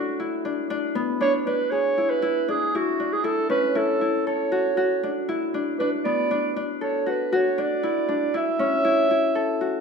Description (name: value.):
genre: contemporary instrumental, contemporary.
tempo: 118 BPM.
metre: 5/4.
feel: straight.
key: unclear.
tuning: A4 = 440 Hz.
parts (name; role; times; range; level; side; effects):
warm clarinet; melody; 0.0-9.8 s; F#4 to E5; -24 LUFS; right 4 dB; none.
Celtic harp; arpeggios; 0.0-9.8 s; B3 to A4; -24 LUFS; left 4 dB; none.
room: moderate recital hall reverb, RT60 1.3 s.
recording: minimal, uncompressed stereo recording.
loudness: -21 LUFS.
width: side -5 dB against mid.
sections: 0.0-9.8 A section.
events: none.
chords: 0.0 F#m7; 0.7 E7; 3.2 F#m7; 5.8 Bm7; 8.3 F#m7.